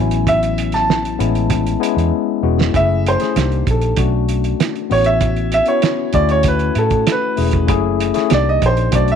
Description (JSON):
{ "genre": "lush 1970s-style soul", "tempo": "97 BPM", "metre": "4/4", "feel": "straight", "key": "A major", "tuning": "A4 = 440 Hz", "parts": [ { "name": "clear baby grand piano", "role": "melody", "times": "0.0-9.2 s", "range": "A4 to A5", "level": "-18 LUFS", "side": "right 2 dB", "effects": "none" }, { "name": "tine electric piano", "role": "accompaniment", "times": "0.0-9.2 s", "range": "F#3 to G#4", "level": "-20 LUFS", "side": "left 14 dB", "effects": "medium stereo tremolo" }, { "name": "vintage muted fingered electric bass", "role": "bass", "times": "0.0-9.2 s", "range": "E1 to A2", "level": "-18 LUFS", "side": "right 1 dB", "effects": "none" }, { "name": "cloth-damped thuddy drum kit", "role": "drums", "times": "0.1-9.2 s", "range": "hi-hat, kick drum, snare drum", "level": "-20 LUFS", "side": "right 5 dB", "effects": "none" } ], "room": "light reverb, small room reverb", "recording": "1960s-style stereo", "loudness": "-14 LUFS", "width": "side -7 dB against mid", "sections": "0.0-2.7 A section; 2.7-9.2 B section", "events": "drum fill 2.1-2.7; grand piano solo 2.7-9.2", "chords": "0.0 A69; 1.2 Amaj7; 2.7 F#m7; 3.4 Cm7; 4.0 Bm7; 4.9 A69; 6.1 Dmaj7; 7.7 F#m7; 8.3 Cm7" }